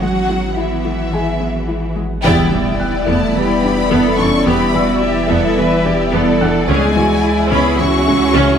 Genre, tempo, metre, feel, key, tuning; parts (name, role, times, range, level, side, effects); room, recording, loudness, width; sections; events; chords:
cinematic, hybrid orchestral and electronic film score; 108 BPM; 4/4; straight; A4 = 443 Hz
rich symphonic violin section; melody; 0.0-8.6 s; E5 to C#6; -22 LUFS; left 4 dB
warm symphonic violin section; second line; 0.0-8.6 s; E4 to D5; -24 LUFS; left 2 dB
clear studio viola section; accompaniment; 0.0-8.6 s; E3 to E4; -20 LUFS; right 2 dB
airy breathy pad; sustained chords; 0.0-8.6 s; E3 to F#5; -20 LUFS; equal; chorus
soft round pluck; arpeggios; 0.0-8.5 s; C#3 to E4; -25 LUFS; left 3 dB; chorus
punchy sub bass; bass; 0.0-8.6 s; E1 to C#2; -24 LUFS; equal
rich symphonic cello section; bass; 0.0-8.6 s; E3 to B4; -22 LUFS; right 2 dB
felt-muted upright piano; texture; 0.0-8.6 s; G#4 to F#6; -31 LUFS; equal; digital delay
mellow French horn section; sustained chords; 2.2-8.6 s; E3 to C#4; -19 LUFS; left 1 dB
rich symphonic double bass section; bass; 2.2-8.4 s; C#2 to E2; -21 LUFS; right 3 dB
impact; sound effects; 2.2-4.5 s; -25 LUFS; equal
wet scoring stage reverb, RT60 1.8 s; -12 LUFS; side -8 dB against mid
0.0-2.2 A section; 2.2-8.6 B section
band accent 2.2-2.8; impact 2.2-4.5
0.0 Eadd9/G#; 2.2 Em7; 6.7 C#m